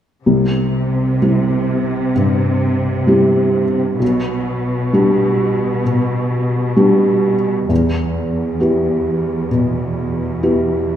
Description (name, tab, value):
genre	cinematic, emotional film score for orchestra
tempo	65 BPM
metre	4/4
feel	rubato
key	unclear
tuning	A4 = 440 Hz
part	felt-muted upright piano	accompaniment	0.3-11.0 s	B1 to G4	-15 LUFS	equal	none
part	warm studio cello section	bass	0.3-11.0 s	E2 to C3	-20 LUFS	equal	none
room	moderate scoring stage reverb, RT60 1.5 s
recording	minimal, uncompressed stereo recording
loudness	-14 LUFS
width	side -10 dB against mid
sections	0.3-11.0 A section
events	none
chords	0.3 C; 4.0 G/B; 7.7 Em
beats	| 0.26 1.21 2.15 3.08 | 4.01 4.93 5.86 6.79 | 7.70 8.62 9.52 10.44